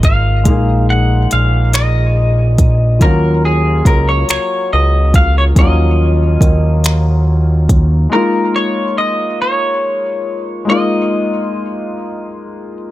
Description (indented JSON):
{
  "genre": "slow six-eight R&B",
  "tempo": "47 BPM (dotted quarters)",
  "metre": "6/8",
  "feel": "straight",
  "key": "unclear",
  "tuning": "A4 = 439 Hz",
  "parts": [
    { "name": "semi-hollow electric guitar", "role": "melody", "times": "0.0-12.8 s", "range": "Ab4 to Gb5", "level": "-18 LUFS", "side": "equal", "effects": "lush chorus" },
    { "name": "clear grand piano", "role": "accompaniment", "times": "0.0-12.9 s", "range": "F3 to Ab4", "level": "-19 LUFS", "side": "left 2 dB", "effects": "none" },
    { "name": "fat analog bass", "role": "bass", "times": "0.0-8.1 s", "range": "Ab1 to Eb2", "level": "-12 LUFS", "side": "equal", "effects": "none" },
    { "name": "smooth R&B drum kit", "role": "drums", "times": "0.0-7.9 s", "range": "finger snaps, hi-hat, kick drum", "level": "-12 LUFS", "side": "equal", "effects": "overdrive" }
  ],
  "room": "digital ambience",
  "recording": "none",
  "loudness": "-11 LUFS",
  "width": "side -15 dB against mid",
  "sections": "0.0-8.1 A section; 8.1-12.9 B section",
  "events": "none",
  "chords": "0.0 Bb7sus4; 3.0 Ebm9; 8.1 Bb7sus4",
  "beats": "| 0.46 1.73 | 3.01 4.29 | 5.56 6.84 | 8.12 9.39 | 10.67 11.95"
}